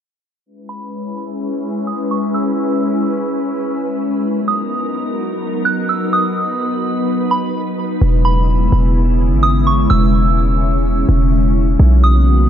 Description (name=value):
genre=hip hop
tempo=127 BPM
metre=4/4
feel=half-time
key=E lydian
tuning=A4 = 440 Hz
part: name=glassy FM pad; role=sustained chords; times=0.5-12.5 s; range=C#3 to B4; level=-18 LUFS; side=left 1 dB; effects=ensemble chorus, built-in reverb, low-pass filter
part: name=soft synth bell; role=melody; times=0.7-12.5 s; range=B5 to F#6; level=-21 LUFS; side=right 3 dB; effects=chorus, low-pass filter, digital delay
part: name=warm 808-style bass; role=bass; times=8.0-12.5 s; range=E1 to B1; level=-13 LUFS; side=equal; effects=none
room=light reverb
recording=dark, warm production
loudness=-14 LUFS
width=side -10 dB against mid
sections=0.5-8.0 A section; 8.0-12.5 B section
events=filter sweep 0.5-8.0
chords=0.5 E6; 4.2 Bmaj7; 8.0 E6; 11.8 Bmaj7